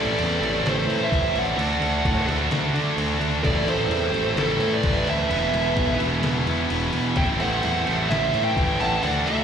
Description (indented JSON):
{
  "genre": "heavy metal",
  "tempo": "129 BPM",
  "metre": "4/4",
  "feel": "straight",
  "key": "A dorian",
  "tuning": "A4 = 440 Hz",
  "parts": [
    { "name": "high-gain lead guitar", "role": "melody", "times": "0.0-9.4 s", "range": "A4 to A5", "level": "-26 LUFS", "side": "right 2 dB", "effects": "distortion, tape echo" },
    { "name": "high-gain lead guitar", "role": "second line", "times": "0.0-9.4 s", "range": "E4 to F#5", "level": "-31 LUFS", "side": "right 2 dB", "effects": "distortion, slapback echo" },
    { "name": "heavy high-gain guitar", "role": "riff", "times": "0.0-9.4 s", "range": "E2 to D4", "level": "-27 LUFS", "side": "right 10 dB", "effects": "distortion, slapback echo" },
    { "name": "scooped high-gain guitar", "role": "riff", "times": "0.0-9.4 s", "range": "B3 to F#4", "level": "-28 LUFS", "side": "left 12 dB", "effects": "distortion" },
    { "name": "fuzz picked electric bass", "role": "bass", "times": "0.0-9.4 s", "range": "E1 to D3", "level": "-26 LUFS", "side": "left 1 dB", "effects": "overdrive" },
    { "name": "trip hop sampler-style drum kit", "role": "drums", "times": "0.2-9.4 s", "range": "crash cymbal, kick drum, snare drum", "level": "-29 LUFS", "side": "equal", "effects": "none" }
  ],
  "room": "digital ambience",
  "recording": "live gig heard through the venue's PA, recital hall reverb",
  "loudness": "-20 LUFS",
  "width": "side -7 dB against mid",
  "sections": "0.0-9.4 A section",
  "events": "half time 0.0-9.4",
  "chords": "0.0 Am; 1.6 D; 3.4 Am; 5.3 E5; 7.2 Am",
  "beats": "0.18 0.65 1.11 | 1.58 2.05 2.51 2.98 | 3.44 3.91 4.37 4.84 | 5.30 5.77 6.23 6.70 | 7.17 7.63 8.10 8.56 | 9.03"
}